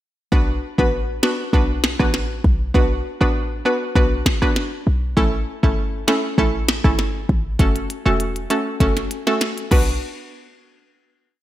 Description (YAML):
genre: dancehall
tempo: 99 BPM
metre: 4/4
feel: straight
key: B minor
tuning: A4 = 442 Hz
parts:
  - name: hollow square pluck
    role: accompaniment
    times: 0.3-9.9 s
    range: A3 to B4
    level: -22 LUFS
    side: right 1 dB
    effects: chorus
  - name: short 808-style bass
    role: bass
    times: 0.3-10.0 s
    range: E1 to B1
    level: -21 LUFS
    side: equal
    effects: none
  - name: glitchy drum kit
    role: drums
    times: 0.3-9.9 s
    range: crash cymbal, hi-hat, kick drum, rim click, snare drum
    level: -20 LUFS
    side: equal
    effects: none
room: light reverb, digital ambience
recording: none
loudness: -17 LUFS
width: side -14 dB against mid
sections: 0.3-10.0 verse; 10.0-11.4 final hit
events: drum fill 8.8-10.0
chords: 0.3 Bm; 5.2 A; 7.6 F#m; 9.7 Bm; 10.0 N.C.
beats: | 0.32 0.93 1.53 2.14 | 2.75 3.35 3.96 4.56 | 5.17 5.78 6.38 6.99 | 7.59 8.20 8.81 9.41